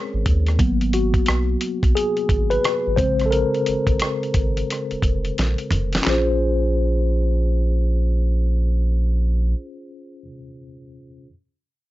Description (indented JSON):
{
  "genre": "R&B, neo-soul",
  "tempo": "88 BPM",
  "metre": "4/4",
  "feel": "swing 63% on 16ths",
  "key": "Bb minor",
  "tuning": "A4 = 441 Hz",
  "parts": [
    { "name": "mellow tine electric piano", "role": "accompaniment", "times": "0.0-11.3 s", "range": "Db3 to C5", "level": "-23 LUFS", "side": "left 2 dB", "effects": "medium stereo tremolo" },
    { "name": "round analog bass", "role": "bass", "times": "0.1-9.5 s", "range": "F1 to Eb2", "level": "-20 LUFS", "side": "equal", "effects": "none" },
    { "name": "dusty soul sampler-style drum kit", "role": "drums", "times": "0.3-6.3 s", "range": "handclaps, hi-hat, kick drum, rim click, snare drum, toms", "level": "-21 LUFS", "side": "equal", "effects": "none" }
  ],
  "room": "little or no reverb",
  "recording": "nothing above 7.6 kHz",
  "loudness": "-18 LUFS",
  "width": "side -16 dB against mid",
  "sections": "0.0-6.0 A section; 6.0-8.8 B section",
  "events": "tine electric piano solo 0.0-6.0; drum fill 5.4-6.0",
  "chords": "0.0 Bbm9; 0.6 Abm9; 3.0 Bbm9"
}